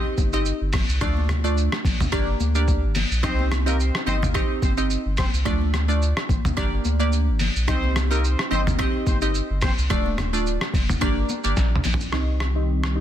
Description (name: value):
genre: afrobeats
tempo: 108 BPM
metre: 4/4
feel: swing 55% on 16ths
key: unclear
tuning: A4 = 440 Hz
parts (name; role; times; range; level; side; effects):
- glassy wavetable pluck; accompaniment; 0.0-13.0 s; A3 to Eb5; -26 LUFS; right 1 dB; chorus, low-pass filter
- warm sub bass; bass; 0.2-13.0 s; D1 to D2; -23 LUFS; equal; none
- lo-fi sampler-style drum kit; drums; 0.2-13.0 s; hi-hat, kick drum, rim click, shaker, snare drum, toms; -24 LUFS; equal; overdrive
- congas; percussion; 0.2-12.0 s; none; -33 LUFS; left 10 dB; none
- mellow horn section; second line; 3.2-9.7 s; Bb3 to C5; -32 LUFS; left 1 dB; tape echo
- hollow soft pad; sustained chords; 12.5-13.0 s; Eb3 to G4; -30 LUFS; left 2 dB; chorus, sidechain pumping, low-pass filter
room: little or no reverb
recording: dense, heavily limited modern master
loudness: -20 LUFS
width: side -11 dB against mid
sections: 0.0-12.1 A section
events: drum fill 11.6-12.1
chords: 0.0 Cm; 1.0 Dm; 2.1 Gm; 3.2 Cm; 5.5 Dm; 6.6 Gm; 7.7 Cm; 9.9 Dm; 11.0 Gm; 12.1 Cm